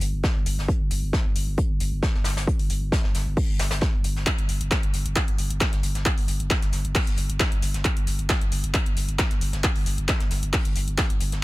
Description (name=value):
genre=driving peak-time techno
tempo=134 BPM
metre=4/4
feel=straight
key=unclear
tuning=A4 = 440 Hz
part: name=saturated sub bass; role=bass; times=0.0-11.4 s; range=G1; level=-27 LUFS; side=equal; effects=sidechain pumping, low-pass filter
part: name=punchy analog drum machine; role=drums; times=0.0-11.4 s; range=handclaps, hi-hat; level=-28 LUFS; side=equal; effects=overdrive, sidechain pumping on hats
part: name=vintage brush drum kit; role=drums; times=0.0-11.4 s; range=hi-hat, snare drum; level=-34 LUFS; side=left 1 dB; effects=sidechain pumping on hats, high-pass filter on hats, high-pass filter on snare, high-pass filter on room
part: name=electronic kick drum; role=drums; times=0.2-11.1 s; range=none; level=-24 LUFS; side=equal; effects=none
room=little or no reverb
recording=none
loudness=-22 LUFS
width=side -19 dB against mid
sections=0.0-11.4 A section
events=none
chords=none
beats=0.24 | 0.69 1.13 1.58 2.03 | 2.48 2.92 3.37 3.82 | 4.27 4.71 5.16 5.61 | 6.06 6.51 6.95 7.40 | 7.85 8.30 8.74 9.19 | 9.64 10.09 10.54 10.98